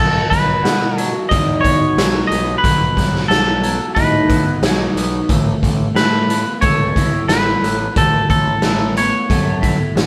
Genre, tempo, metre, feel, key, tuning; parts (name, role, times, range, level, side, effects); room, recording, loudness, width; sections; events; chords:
quiet-loud alternative rock; 90 BPM; 4/4; straight; B mixolydian; A4 = 440 Hz
twangy electric guitar; melody; 0.0-10.1 s; A4 to D#5; -20 LUFS; equal
electric guitar through a small old amp; arpeggios; 0.0-10.1 s; B2 to A4; -25 LUFS; equal; phaser
overdriven picked electric bass; bass; 0.0-10.1 s; A1 to B2; -25 LUFS; equal
raw garage drum kit; drums; 0.3-10.1 s; hi-hat, kick drum, snare drum; -19 LUFS; equal
moderate studio reverb, RT60 0.8 s; band playing live in one room; -16 LUFS; mono
0.0-10.1 A section
0.0 B; 5.3 Asus2